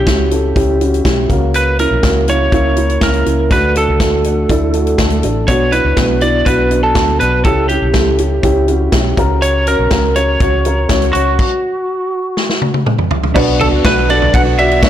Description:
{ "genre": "piano-driven pop", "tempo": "122 BPM", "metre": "4/4", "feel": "straight", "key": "B minor", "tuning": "A4 = 440 Hz", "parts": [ { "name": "lightly driven lead guitar", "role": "melody", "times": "0.0-14.9 s", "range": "F#4 to F#5", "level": "-16 LUFS", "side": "right 2 dB", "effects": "none" }, { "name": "dark upright piano", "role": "accompaniment", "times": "0.0-14.9 s", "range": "B2 to D5", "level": "-16 LUFS", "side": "equal", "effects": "none" }, { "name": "vintage muted fingered electric bass", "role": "bass", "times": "0.0-14.9 s", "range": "A1 to D2", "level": "-17 LUFS", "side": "equal", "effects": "none" }, { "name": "natural country drum kit", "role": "drums", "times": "0.1-14.9 s", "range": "crash cymbal, hi-hat, kick drum, ride cymbal, snare drum, toms", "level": "-16 LUFS", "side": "equal", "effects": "soft clipping on kick" }, { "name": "direct-recorded clean electric guitar", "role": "riff", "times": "13.3-14.9 s", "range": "B2 to F#4", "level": "-18 LUFS", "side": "right 4 dB", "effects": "analog chorus" } ], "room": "light reverb, small room ambience", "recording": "blown-out, overdriven recording, overdrive", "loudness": "-11 LUFS", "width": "side -11 dB against mid", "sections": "0.0-13.4 A section; 13.4-14.9 B section", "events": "stop 11.4-13.4; drum fill 12.4-13.4", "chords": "0.0 C#dim; 1.3 F#; 3.5 D; 5.5 Bm; 7.4 C#dim; 9.2 F#; 11.4 N.C.; 13.4 Bm", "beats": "0.07 0.56 1.05 | 1.54 2.04 2.53 3.02 | 3.51 4.00 4.50 4.99 | 5.48 5.97 6.46 6.96 | 7.45 7.94 8.43 8.93 | 9.42 9.91 10.40 10.89 | 11.39 11.88 12.37 12.86 | 13.36 13.85 14.34 14.83" }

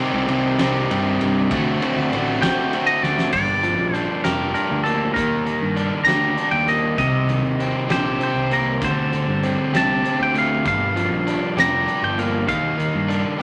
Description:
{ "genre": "indie rock", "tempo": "66 BPM (dotted quarters)", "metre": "6/8", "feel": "straight", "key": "G minor", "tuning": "A4 = 440 Hz", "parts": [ { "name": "phased string machine", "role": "sustained chords", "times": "0.0-3.3 s", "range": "G3 to Bb5", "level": "-36 LUFS", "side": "equal", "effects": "none" }, { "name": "overdriven semi-hollow guitar", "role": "riff", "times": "0.0-13.4 s", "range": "G2 to G4", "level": "-24 LUFS", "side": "equal", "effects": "none" }, { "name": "overdriven semi-hollow guitar", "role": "riff", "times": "0.0-13.4 s", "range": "G2 to F#4", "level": "-32 LUFS", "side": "equal", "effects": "none" }, { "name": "fuzz picked electric bass", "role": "bass", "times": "0.1-13.2 s", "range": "F1 to G2", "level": "-28 LUFS", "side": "equal", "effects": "overdrive" }, { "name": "big rock drum kit", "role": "drums", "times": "0.3-13.2 s", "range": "crash cymbal, hi-hat, kick drum, ride cymbal, snare drum", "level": "-31 LUFS", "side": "equal", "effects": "none" }, { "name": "twangy electric guitar", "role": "melody", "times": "2.4-13.4 s", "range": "A4 to Bb5", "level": "-24 LUFS", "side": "equal", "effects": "none" } ], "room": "wet studio reverb, RT60 0.8 s", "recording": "none", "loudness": "-20 LUFS", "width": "mono", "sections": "0.0-3.3 A section; 3.3-13.4 B section", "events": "drum fill 3.0-3.3", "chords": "0.0 Cm7; 1.5 D7sus4; 3.3 Gm7; 5.2 Ebmaj7; 7.0 Cm7; 8.8 D7sus4; 10.7 Gm7; 12.5 Ebmaj7", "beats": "0.59 | 1.50 2.42 | 3.33 4.25 | 5.16 6.08 | 7.00 7.91 | 8.83 9.74 | 10.66 11.57 | 12.49 13.41" }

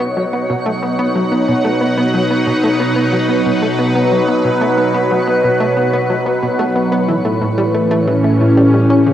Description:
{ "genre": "ambient, sequencer-driven space music", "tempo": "91 BPM", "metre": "4/4", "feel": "straight", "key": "unclear", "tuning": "A4 = 443 Hz", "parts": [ { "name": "phased analog pad", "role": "sustained chords", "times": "0.0-9.1 s", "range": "A2 to F#5", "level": "-14 LUFS", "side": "equal", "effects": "phaser, chorus, cassette tape, shimmer reverb" }, { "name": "plucky analog bass", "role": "riff", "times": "0.0-9.1 s", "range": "A2 to C#4", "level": "-18 LUFS", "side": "equal", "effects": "lush chorus, cassette tape, analog delay, shimmer reverb" }, { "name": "twinkling granular texture", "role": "texture", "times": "0.0-9.1 s", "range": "C#5", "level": "-25 LUFS", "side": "right 1 dB", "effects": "built-in reverb, cassette tape, shimmer reverb" } ], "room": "wet lush hall reverb, RT60 3.0 s", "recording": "home recording on cassette", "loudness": "-12 LUFS", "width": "side -11 dB against mid", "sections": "0.0-9.1 A section", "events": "none", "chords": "0.0 B; 7.1 A7", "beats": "0.49 1.15 | 1.81 2.47 3.13 3.79 | 4.45 5.11 5.77 6.43 | 7.09 7.75 8.41 9.07" }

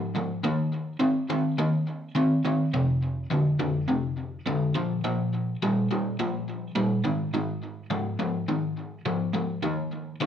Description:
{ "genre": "rock", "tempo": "104 BPM", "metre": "4/4", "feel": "straight", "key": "unclear", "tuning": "A4 = 440 Hz", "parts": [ { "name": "crunchy overdriven guitar", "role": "solo", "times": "0.0-10.3 s", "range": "F2 to C4", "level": "-25 LUFS", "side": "equal", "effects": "tape echo" } ], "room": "moderate studio reverb, RT60 0.8 s", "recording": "band playing live in one room", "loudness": "-25 LUFS", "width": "side -9 dB against mid", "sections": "0.0-10.3 A section", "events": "none", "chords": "0.4 Eb5; 2.7 F5; 4.7 Bb5; 7.0 Ab5; 9.6 Eb5", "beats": "| 0.45 1.02 1.59 2.17 | 2.74 3.31 3.88 4.46 | 5.03 5.61 6.18 6.75 | 7.33 7.91 8.48 9.05 | 9.63 10.21" }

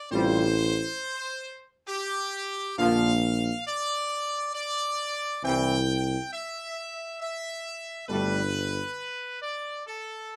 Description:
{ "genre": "classical, ceremonial fanfare", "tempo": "68 BPM", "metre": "3/4", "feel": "straight", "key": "F major", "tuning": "A4 = 440 Hz", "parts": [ { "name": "bright trumpet section", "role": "melody", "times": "0.0-10.4 s", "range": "G4 to G5", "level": "-32 LUFS", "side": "equal", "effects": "none" }, { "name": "dark French horn section", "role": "sustained chords", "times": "0.1-8.4 s", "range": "G3 to F4", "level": "-32 LUFS", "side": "equal", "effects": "none" }, { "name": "mellow trombone section", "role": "sustained chords", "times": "0.1-8.4 s", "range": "B2 to G3", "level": "-33 LUFS", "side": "equal", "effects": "none" }, { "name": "mellow tuba", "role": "bass", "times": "0.1-8.8 s", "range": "G1 to C2", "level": "-28 LUFS", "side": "equal", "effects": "none" } ], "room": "moderate studio ambience, RT60 0.5 s", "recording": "none", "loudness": "-29 LUFS", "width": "mono", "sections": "0.0-10.4 A section", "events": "none", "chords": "0.1 Fadd9/A; 2.8 Bb; 5.4 C; 8.1 Gadd9", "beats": "| 0.11 1.00 1.88 | 2.79 3.67 4.54 | 5.44 6.32 7.20 | 8.08 8.97 9.88" }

